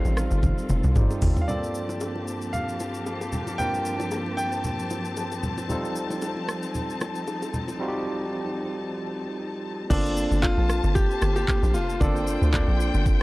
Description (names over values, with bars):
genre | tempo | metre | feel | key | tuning
amapiano | 114 BPM | 4/4 | swing 55% on 16ths | G minor | A4 = 440 Hz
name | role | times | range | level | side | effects
clear baby grand piano | melody | 0.0-5.4, 9.9-13.0 s | D4 to G5 | -30 LUFS | equal | tape echo
barky tine electric piano | accompaniment | 0.0-13.2 s | G2 to C5 | -31 LUFS | right 1 dB | medium stereo tremolo
warm studio string section | sustained chords | 0.0-13.2 s | Eb3 to A5 | -33 LUFS | left 2 dB | sidechain pumping
tight log drum bass | bass | 0.1-1.3, 9.9-13.2 s | F1 to D2 | -23 LUFS | equal | none
smooth R&B drum kit | drums | 0.1-13.2 s | crash cymbal, handclaps, hi-hat, kick drum, rim click, shaker, toms | -26 LUFS | equal | none
bongos and congas | percussion | 0.1-7.8 s | none | -34 LUFS | equal | none
room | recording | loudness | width
little or no reverb | dry, gritty hardware recording, cassette tape | -23 LUFS | side -20 dB against mid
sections
0.0-1.5 A section; 1.5-9.9 B section; 9.9-13.2 A section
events
drop 0.0-1.5, 9.9-13.2; drum fill 0.4-1.5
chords
0.0 F7; 1.5 Gm11; 5.7 F7; 9.9 Gm11